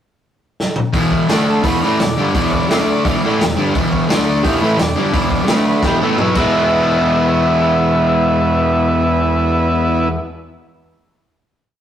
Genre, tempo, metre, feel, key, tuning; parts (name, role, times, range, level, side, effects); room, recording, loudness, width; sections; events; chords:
garage rock duo or trio; 172 BPM; 4/4; straight; E mixolydian; A4 = 438 Hz
raw garage drum kit; drums; 0.6-6.4 s; crash cymbal, hi-hat, kick drum, snare drum, toms; -20 LUFS; equal
overdriven semi-hollow guitar; riff; 0.9-10.2 s; E2 to E4; -14 LUFS; equal
overdriven combo organ; melody; 1.5-10.1 s; B3 to D5; -19 LUFS; right 1 dB
wet stone room reverb, RT60 1.4 s; rough rehearsal-room recording, warm saturation; -13 LUFS; side -10 dB against mid
0.0-0.9 pickup bar; 0.9-6.5 pre-chorus; 6.5-9.3 final hit
drum fill 0.6-0.9, 5.8-6.5
0.0 N.C.; 0.9 E5; 1.3 D5; 1.6 E5; 2.7 D5; 3.0 E5; 4.1 D5; 4.4 E5; 5.5 D5; 5.8 E5; 6.3 E